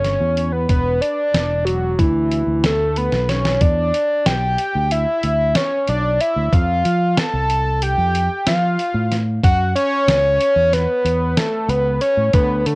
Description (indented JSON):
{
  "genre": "progressive instrumental, band music in an uneven meter",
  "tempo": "186 BPM (eighths)",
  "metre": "9/8",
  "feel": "straight",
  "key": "E dorian",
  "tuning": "A4 = 441 Hz",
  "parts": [
    { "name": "fat analog lead", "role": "melody", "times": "0.0-12.8 s", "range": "E4 to A5", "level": "-18 LUFS", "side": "equal", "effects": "none" },
    { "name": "fingered electric bass", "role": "bass", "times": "0.0-12.8 s", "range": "E1 to F3", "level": "-20 LUFS", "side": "equal", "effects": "none" },
    { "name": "dusty soul sampler-style drum kit", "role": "drums", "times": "0.0-12.8 s", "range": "hi-hat, kick drum, snare drum", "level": "-19 LUFS", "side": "equal", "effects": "cassette tape" }
  ],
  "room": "light reverb, digital ambience",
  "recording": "home recording on cassette",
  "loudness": "-15 LUFS",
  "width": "side -25 dB against mid",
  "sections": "0.0-3.6 A section; 3.6-12.8 B section",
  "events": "drum fill 3.1-3.6",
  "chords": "0.0 A7 (rootless); 0.7 E5; 3.6 Em7; 6.5 F; 9.4 F#m7",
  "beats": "0.04 0.37 | 0.69 1.02 1.34 1.67 1.99 2.31 2.64 2.96 3.29 | 3.61 3.94 4.26 4.58 4.91 5.23 5.55 5.88 6.20 | 6.52 6.85 7.17 7.49 7.82 8.14 8.46 8.79 9.11 | 9.43 9.76 10.08 10.40 10.72 11.05 11.37 11.70 12.02 | 12.34 12.66"
}